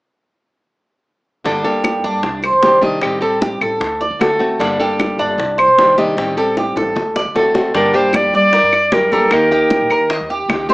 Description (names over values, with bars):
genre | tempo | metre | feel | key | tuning
latin, Cuban son and guajira | 153 BPM | 4/4 | straight | G harmonic minor | A4 = 444 Hz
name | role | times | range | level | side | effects
nylon-string guitar | accompaniment | 1.4-10.7 s | D3 to A4 | -19 LUFS | equal | none
Cuban tres | arpeggios | 1.5-10.7 s | D4 to Eb5 | -16 LUFS | right 1 dB | none
upright bass | bass | 1.5-10.7 s | G1 to G3 | -28 LUFS | equal | none
bongos | percussion | 1.5-10.7 s | none | -24 LUFS | left 1 dB | none
congas | percussion | 1.5-10.7 s | none | -24 LUFS | equal | none
claves | percussion | 1.8-10.7 s | none | -22 LUFS | left 1 dB | none
bright clarinet | melody | 7.8-10.5 s | A4 to D5 | -13 LUFS | equal | none
room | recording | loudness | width
moderate studio ambience, RT60 0.5 s | small speaker sound | -12 LUFS | side -22 dB against mid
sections
1.5-7.7 A section; 7.7-10.7 B section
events
break 6.2-7.7; drum fill 6.6-7.7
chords
1.5 Gmadd9; 2.2 Cmadd9; 3.0 Am7b5; 3.8 D7; 4.6 Gmadd9; 5.4 Cmadd9; 6.2 Am7b5; 7.0 D7; 7.7 Gm; 9.3 Eb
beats
| 1.46 1.85 2.24 2.64 | 3.03 3.42 3.82 4.21 | 4.60 5.00 5.39 5.78 | 6.18 6.57 6.96 7.35 | 7.75 8.14 8.53 8.92 | 9.32 9.71 10.10 10.49